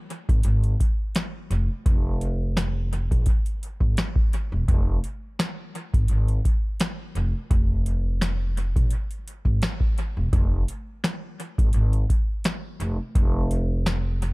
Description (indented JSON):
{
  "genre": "hip hop, boom-bap hip-hop",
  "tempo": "85 BPM",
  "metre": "4/4",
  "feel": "swing 55% on 16ths",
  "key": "F minor",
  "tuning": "A4 = 440 Hz",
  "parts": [
    { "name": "booming analog drum machine", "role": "drums", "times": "0.1-14.3 s", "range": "hi-hat, kick drum, snare drum", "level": "-23 LUFS", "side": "equal", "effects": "none" },
    { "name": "upright bass", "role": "bass", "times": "0.3-14.3 s", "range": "E1 to Bb1", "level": "-24 LUFS", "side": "equal", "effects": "none" }
  ],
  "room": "little or no reverb",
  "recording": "echo-heavy mix",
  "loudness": "-22 LUFS",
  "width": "side -24 dB against mid",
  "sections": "0.0-14.3 A section",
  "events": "none",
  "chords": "none",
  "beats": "0.45 1.15 | 1.86 2.56 3.27 3.98 | 4.68 5.39 6.09 6.80 | 7.50 8.21 8.92 9.62 | 10.33 11.03 11.74 12.45 | 13.15 13.86"
}